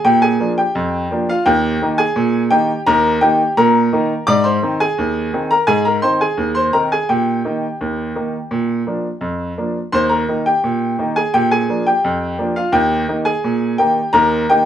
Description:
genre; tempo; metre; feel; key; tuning
ragtime piano; 85 BPM; 2/4; straight; Eb major; A4 = 443 Hz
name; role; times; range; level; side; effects
clear baby grand piano; solo; 0.0-14.7 s; Eb2 to D6; -14 LUFS; equal; none
room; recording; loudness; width
moderate studio ambience, RT60 0.5 s; minimal, uncompressed stereo recording; -14 LUFS; side -10 dB against mid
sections
0.0-14.7 A section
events
none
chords
0.1 Bb7; 1.5 Eb; 4.3 Ab; 7.1 Eb/Bb; 8.5 Bb; 9.9 Eb; 11.3 Bb7; 12.7 Eb

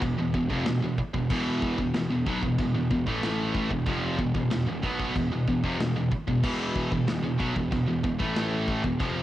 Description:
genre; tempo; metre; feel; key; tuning
heavy metal; 94 BPM; 4/4; straight; unclear; A4 = 438 Hz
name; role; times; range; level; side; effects
high-gain distorted guitar; riff; 0.0-9.2 s; E2 to B3; -29 LUFS; right 3 dB; distortion, cassette tape
sludgy distorted guitar; riff; 0.0-9.2 s; E2 to B3; -33 LUFS; left 5 dB; overdrive, cassette tape
tight distorted guitar; riff; 0.0-9.2 s; E2 to B3; -31 LUFS; left 1 dB; distortion, cassette tape
fuzz picked electric bass; bass; 0.0-9.2 s; E1 to B1; -33 LUFS; equal; overdrive
big rock drum kit; drums; 0.0-9.2 s; china cymbal, crash cymbal, kick drum, snare drum; -32 LUFS; equal; cassette tape
room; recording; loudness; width
small room ambience; home recording on cassette; -24 LUFS; side -14 dB against mid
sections
0.0-9.2 A section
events
none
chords
0.0 E5; 3.1 A5; 3.7 E5; 8.2 A5

